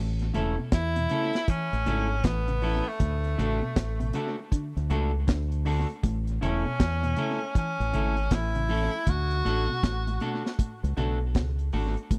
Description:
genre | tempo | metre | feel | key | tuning
roots reggae | 79 BPM | 4/4 | swing 64% on 16ths | unclear | A4 = 440 Hz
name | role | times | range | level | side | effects
mellow electric guitar | arpeggios | 0.0-12.2 s | A2 to E3 | -37 LUFS | equal | tube saturation
deep dub fingered electric bass | bass | 0.0-12.2 s | E1 to E2 | -30 LUFS | equal | none
deep reggae drum kit | drums | 0.2-12.2 s | hi-hat, kick drum, snare drum | -30 LUFS | equal | tape echo
clean electric guitar | accompaniment | 0.3-11.9 s | A3 to A4 | -36 LUFS | equal | tape echo
bright tenor saxophone | melody | 0.7-10.6 s | A3 to F#4 | -33 LUFS | equal | tape echo
room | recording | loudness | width
little or no reverb | dry, close 1970s-style studio recording | -27 LUFS | mono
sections
0.0-12.2 A section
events
none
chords
0.0 A; 3.0 D; 6.0 A; 9.1 D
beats
0.72 1.48 2.24 | 3.00 3.76 4.52 5.28 | 6.04 6.80 7.55 8.31 | 9.07 9.83 10.59 11.35 | 12.11

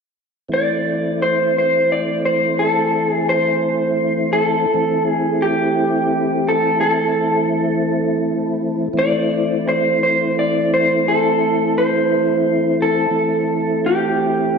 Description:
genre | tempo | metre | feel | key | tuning
blues | 57 BPM (dotted quarters) | 12/8 | straight | A minor | A4 = 440 Hz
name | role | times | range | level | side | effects
electric guitar through a small old amp | melody | 0.5-14.6 s | G4 to D5 | -17 LUFS | right 1 dB | lush chorus
mellow tonewheel organ | sustained chords | 0.5-14.6 s | E3 to E4 | -20 LUFS | left 1 dB | slow rotary speaker, chorus vibrato
room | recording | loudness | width
wet lush hall reverb, RT60 2.5 s | dreamy mix soaked in reverb, nothing above 10.6 kHz | -15 LUFS | side -5 dB against mid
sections
0.5-14.6 A section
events
none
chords
0.5 Am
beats
| 0.51 1.56 2.61 3.66 | 4.71 5.76 6.81 7.86 | 8.91 9.96 11.01 12.05 | 13.10 14.15

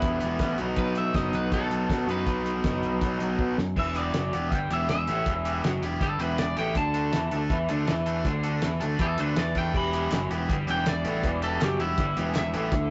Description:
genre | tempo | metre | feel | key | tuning
indie rock | 161 BPM | 4/4 | straight | E minor | A4 = 441 Hz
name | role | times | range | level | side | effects
electric guitar at the edge of break-up | melody | 0.0-12.9 s | E4 to B5 | -33 LUFS | equal | none
biting overdriven guitar | riff | 0.0-12.7 s | E3 to A4 | -36 LUFS | equal | none
raw garage guitar | riff | 0.0-12.9 s | E2 to E4 | -34 LUFS | equal | overdrive
overdriven picked electric bass | bass | 0.0-12.9 s | E1 to B2 | -32 LUFS | equal | none
cloth-damped thuddy drum kit | drums | 0.0-12.8 s | crash cymbal, hi-hat, kick drum, snare drum | -32 LUFS | equal | none
overdriven tine electric piano | second line | 9.7-12.9 s | E4 to G4 | -43 LUFS | equal | none
string machine, violins | sustained chords | 9.7-12.9 s | D3 to E4 | -44 LUFS | equal | none
group handclap | percussion | 10.1-12.4 s | none | -43 LUFS | equal | none
room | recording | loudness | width
moderate studio reverb, RT60 0.6 s | rough rehearsal-room recording, tube saturation, nothing above 7.8 kHz | -27 LUFS | mono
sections
0.0-3.8 A section; 3.8-12.9 B section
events
drum fill 3.4-3.8; clean electric guitar solo 3.8-12.9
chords
0.0 Em; 0.6 B; 3.8 Em; 6.8 D5; 9.7 Em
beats
0.02 0.40 | 0.77 1.15 1.52 1.90 | 2.27 2.64 3.02 3.39 | 3.77 4.14 4.51 4.89 | 5.26 5.64 6.01 6.38 | 6.76 7.13 7.50 7.88 | 8.25 8.62 9.00 9.37 | 9.74 10.12 10.49 10.86 | 11.24 11.61 11.98 12.35 | 12.72

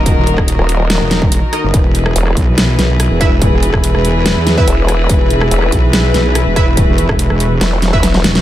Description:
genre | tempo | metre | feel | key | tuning
heavy wobble dubstep | 143 BPM | 4/4 | half-time | unclear | A4 = 437 Hz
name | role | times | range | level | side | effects
warm chamber string section | sustained chords | 0.0-8.4 s | Eb3 to B4 | -20 LUFS | left 2 dB | sidechain pumping
wobble bass | bass | 0.0-8.4 s | Eb1 to E2 | -14 LUFS | equal | chorus, overdrive
deep dark ambient pad | texture | 0.0-8.4 s | Gb4 to Db6 | -22 LUFS | equal | chorus, built-in reverb, sidechain pumping
dubstep drum kit | drums | 0.1-8.4 s | hi-hat, rim click, snare drum | -16 LUFS | equal | studio reverb
electronic kick drum | drums | 0.1-8.0 s | none | -13 LUFS | equal | distortion, studio reverb
vowel-sweep wobble bass | bass | 0.6-8.2 s | Eb1 to E1 | -13 LUFS | equal | chorus, overdrive
orchestra-hit-like synth stab | stabs | 1.5-8.0 s | Eb4 to E5 | -22 LUFS | right 2 dB | built-in reverb, dub echo
room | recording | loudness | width
digital ambience | none | -10 LUFS | side -13 dB against mid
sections
0.0-8.4 A section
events
drum fill 8.0-8.4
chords
0.0 Ebm; 1.7 E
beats
| 0.06 0.48 0.90 1.32 | 1.74 2.16 2.58 3.00 | 3.42 3.84 4.26 4.68 | 5.09 5.51 5.93 6.35 | 6.77 7.19 7.61 8.03

